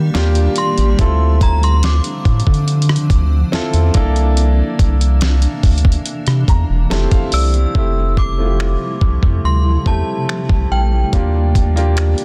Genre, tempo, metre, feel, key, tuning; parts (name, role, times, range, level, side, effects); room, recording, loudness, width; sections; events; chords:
contemporary R&B; 71 BPM; 4/4; straight; F major; A4 = 440 Hz
synth chime; melody; 0.0-12.2 s; G5 to G6; -26 LUFS; equal; ensemble chorus, delay
clear baby grand piano; accompaniment; 0.0-12.2 s; A3 to Bb5; -25 LUFS; equal
granular cloud pad; sustained chords; 0.0-12.2 s; C3 to G4; -28 LUFS; equal; built-in reverb
round analog bass; bass; 0.0-12.1 s; E1 to Eb3; -17 LUFS; equal
dusty soul sampler-style drum kit; drums; 0.1-12.2 s; finger snaps, hi-hat, kick drum, rim click, snare drum; -18 LUFS; equal; vintage 12-bit sampler grit
digital ambience; dense, heavily limited modern master; -15 LUFS; mono
0.0-7.7 A section; 7.7-12.2 B section
grand piano fill 6.1-7.7
0.0 Ebmaj7; 1.0 Dm7; 3.9 C13; 6.9 Fmaj9; 11.1 Ebmaj7